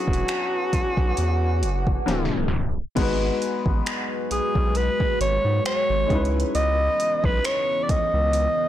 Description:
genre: contemporary R&B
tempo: 67 BPM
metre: 4/4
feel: swing 54% on 16ths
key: unclear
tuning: A4 = 438 Hz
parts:
  - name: warm alto saxophone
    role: melody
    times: 0.0-8.7 s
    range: F#4 to D#5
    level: -23 LUFS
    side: equal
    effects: none
  - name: warm concert grand piano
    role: accompaniment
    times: 0.0-8.7 s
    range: F#3 to B4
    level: -29 LUFS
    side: left 4 dB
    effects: none
  - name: deep dark ambient pad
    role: sustained chords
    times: 0.0-8.7 s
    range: C#3 to D6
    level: -32 LUFS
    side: equal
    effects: chorus, built-in reverb
  - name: saturated sub bass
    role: bass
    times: 0.1-8.5 s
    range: D1 to G#2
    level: -24 LUFS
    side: equal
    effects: none
  - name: smooth R&B drum kit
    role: drums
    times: 0.1-8.6 s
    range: crash cymbal, finger snaps, hi-hat, kick drum, snare drum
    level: -27 LUFS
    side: equal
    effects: soft clipping on snare
room: digital ambience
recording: blown-out, overdriven recording, overdrive, tape stop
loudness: -20 LUFS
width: side -12 dB against mid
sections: 0.0-3.0 A section; 3.0-8.7 B section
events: drum fill 2.1-3.0; tape stop 2.1-3.0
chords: 0.0 E13; 2.1 E9; 3.0 G#m7; 6.1 C#m9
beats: 0.28 1.18 2.07 | 2.97 3.87 4.76 5.66 | 6.55 7.45 8.34

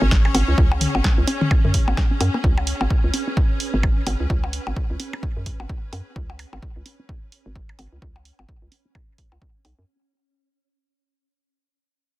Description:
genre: minimal techno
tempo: 129 BPM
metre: 4/4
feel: swing 59% on 16ths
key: unclear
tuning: A4 = 439 Hz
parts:
  - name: hollow square pluck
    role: riff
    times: 0.0-9.8 s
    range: G#3 to C#4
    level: -29 LUFS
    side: right 1 dB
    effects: chorus, cassette tape, sidechain pumping, tape echo
  - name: hollow knocking FM bass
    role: bass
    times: 0.0-9.8 s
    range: G#1 to F#2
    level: -22 LUFS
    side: equal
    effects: sidechain pumping
  - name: clear studio string section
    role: texture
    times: 0.0-9.9 s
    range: C#4 to C#5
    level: -32 LUFS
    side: left 1 dB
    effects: sidechain pumping
  - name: swarming drone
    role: texture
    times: 0.0-9.9 s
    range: C#4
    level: -33 LUFS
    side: equal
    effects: built-in reverb, sidechain pumping
  - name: electronic kick drum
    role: drums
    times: 0.1-9.5 s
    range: none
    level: -20 LUFS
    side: equal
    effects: none
  - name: punchy analog drum machine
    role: drums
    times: 0.1-9.8 s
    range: hi-hat, snare drum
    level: -27 LUFS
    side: right 2 dB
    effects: none
  - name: electronic percussion blips and toms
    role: percussion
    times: 0.3-9.8 s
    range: none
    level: -27 LUFS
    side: left 3 dB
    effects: overdrive, tape echo
room: little or no reverb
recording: dense, heavily limited modern master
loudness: -18 LUFS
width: side -17 dB against mid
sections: 0.0-9.9 A section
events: fade-out on string section 0.0-9.9; fade-out 0.0-9.9; filter sweep on synth arpeggio sound 0.0-9.9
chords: 0.0 C#5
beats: 0.11 | 0.58 1.04 1.51 1.97 | 2.44 2.90 3.37 3.83 | 4.30 4.76 5.23 5.69 | 6.16 6.62 7.09 7.55 | 8.02 8.48 8.95 9.41

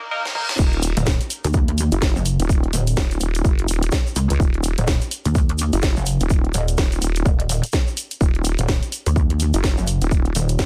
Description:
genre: bass house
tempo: 126 BPM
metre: 4/4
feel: swing 60% on 16ths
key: Eb minor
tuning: A4 = 436 Hz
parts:
  - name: reverse cymbal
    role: sound effects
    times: 0.0-0.6 s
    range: none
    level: -31 LUFS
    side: equal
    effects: none
  - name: band-passed chord stab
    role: stabs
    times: 0.1-0.5 s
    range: Bb3 to Bb4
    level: -30 LUFS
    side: equal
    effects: phaser, sidechain pumping, digital delay
  - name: house drum kit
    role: drums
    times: 0.3-10.7 s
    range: crash cymbal, hi-hat, snare drum, toms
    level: -28 LUFS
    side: equal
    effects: none
  - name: vowel-sweep wobble bass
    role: bass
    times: 0.6-10.7 s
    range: Eb1 to Db2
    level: -24 LUFS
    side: equal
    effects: chorus, sidechain pumping
  - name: electronic kick drum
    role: drums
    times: 0.6-10.7 s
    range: none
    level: -21 LUFS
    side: equal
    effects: none
  - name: tube shaker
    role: percussion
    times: 0.6-10.7 s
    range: none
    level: -34 LUFS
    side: equal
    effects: none
  - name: pulsing pluck wobble bass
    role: bass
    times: 1.0-10.6 s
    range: Eb1 to Eb2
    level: -22 LUFS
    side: equal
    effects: chorus, tube saturation, sidechain pumping
room: little or no reverb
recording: high-pass filter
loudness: -20 LUFS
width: mono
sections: 0.6-10.7 A section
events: break 0.0-0.6; reverse cymbal 0.0-0.6; drum fill 0.2-0.6; drop 0.6-10.7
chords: 0.0 Eb5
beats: 0.11 | 0.59 1.06 1.54 2.02 | 2.49 2.97 3.45 3.92 | 4.40 4.88 5.35 5.83 | 6.30 6.78 7.26 7.73 | 8.21 8.68 9.16 9.64 | 10.11 10.59

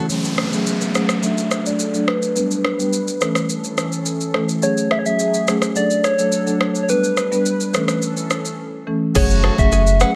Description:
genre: afrobeats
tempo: 106 BPM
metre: 4/4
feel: straight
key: unclear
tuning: A4 = 439 Hz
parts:
  - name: lush unison pad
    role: sustained chords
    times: 0.1-9.1 s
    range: E3 to B4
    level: -31 LUFS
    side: equal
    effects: chorus, low-pass filter
  - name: direct-recorded clean electric guitar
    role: riff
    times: 0.0-0.1, 9.2-10.1 s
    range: C#4 to B4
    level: -28 LUFS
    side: equal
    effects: delay
  - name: soft struck synth lead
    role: melody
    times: 0.1-10.2 s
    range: B4 to F#5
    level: -24 LUFS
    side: equal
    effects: chorus, low-pass filter, delay
  - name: marimba with medium mallets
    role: accompaniment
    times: 0.1-10.2 s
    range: E3 to B4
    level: -23 LUFS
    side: equal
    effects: low-pass filter
  - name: afro-pop drum kit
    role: drums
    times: 0.1-10.1 s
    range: crash cymbal, kick drum, rim click, shaker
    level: -25 LUFS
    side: equal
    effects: overdrive
  - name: downlifter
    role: sound effects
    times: 0.1-4.6 s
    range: none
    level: -32 LUFS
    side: equal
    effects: none
  - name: clear horn section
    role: second line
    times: 9.2-10.0 s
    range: C#3 to F#4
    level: -32 LUFS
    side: equal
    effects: none
  - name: warm sub bass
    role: bass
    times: 9.2-10.0 s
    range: F#1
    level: -19 LUFS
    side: equal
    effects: none
room: light reverb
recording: none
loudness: -19 LUFS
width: mono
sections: 0.1-9.2 A section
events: filter sweep 0.1-9.2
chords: 0.1 F#madd9; 1.2 D; 2.4 G; 3.2 A; 4.6 F#madd9; 5.8 D; 6.9 G; 7.7 A; 9.2 F#madd9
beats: | 0.10 0.66 1.23 1.79 | 2.36 2.93 3.49 4.06 | 4.62 5.19 5.76 6.32 | 6.89 7.46 8.02 8.59 | 9.15 9.72

